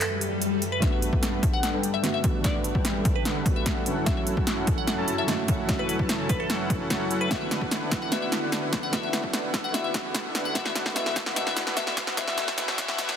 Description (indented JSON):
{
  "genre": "future bass",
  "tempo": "148 BPM",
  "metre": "4/4",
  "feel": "half-time",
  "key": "D major",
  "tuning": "A4 = 444 Hz",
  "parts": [
    { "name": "glassy wavetable pluck", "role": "melody", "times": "0.0-13.2 s", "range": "A4 to F#5", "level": "-32 LUFS", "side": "left 4 dB", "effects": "chorus, sidechain pumping, dub echo" },
    { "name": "dark baby grand piano", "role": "accompaniment", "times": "0.0-13.2 s", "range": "A3 to F#4", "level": "-34 LUFS", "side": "right 4 dB", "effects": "sidechain pumping, dub echo" },
    { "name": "ethereal airy pad", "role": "sustained chords", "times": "0.0-13.2 s", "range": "D2 to E5", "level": "-38 LUFS", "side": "right 1 dB", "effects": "ensemble chorus, built-in reverb, phaser, sidechain pumping" },
    { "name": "big-room dance drum kit", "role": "drums", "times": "0.0-13.2 s", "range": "handclaps, hi-hat, snare drum", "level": "-29 LUFS", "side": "equal", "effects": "overdrive" },
    { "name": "swell, riser and reverse cymbal", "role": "sound effects", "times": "0.1-0.8, 9.5-13.2 s", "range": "none", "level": "-35 LUFS", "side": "left 5 dB", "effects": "none" },
    { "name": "soft supersaw", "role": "riff", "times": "0.8-13.2 s", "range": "D3 to A5", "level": "-31 LUFS", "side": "equal", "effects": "sidechain pumping, low-pass filter" },
    { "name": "electronic kick drum", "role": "drums", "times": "0.8-12.9 s", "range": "none", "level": "-27 LUFS", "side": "equal", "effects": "overdrive" }
  ],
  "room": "light reverb",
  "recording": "dense, heavily limited modern master, high-pass filter",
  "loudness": "-23 LUFS",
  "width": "side -8 dB against mid",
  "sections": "0.8-13.2 A section",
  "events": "swell 0.1-0.8; build-up 0.8-13.2; drum fill 0.8-13.2; filter sweep on supersaw synth 0.8-13.2; filter sweep 0.8-13.2; reverse cymbal 13.0",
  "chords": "0.0 F#m7; 0.8 Gmaj7; 3.9 F#m7; 7.3 D6"
}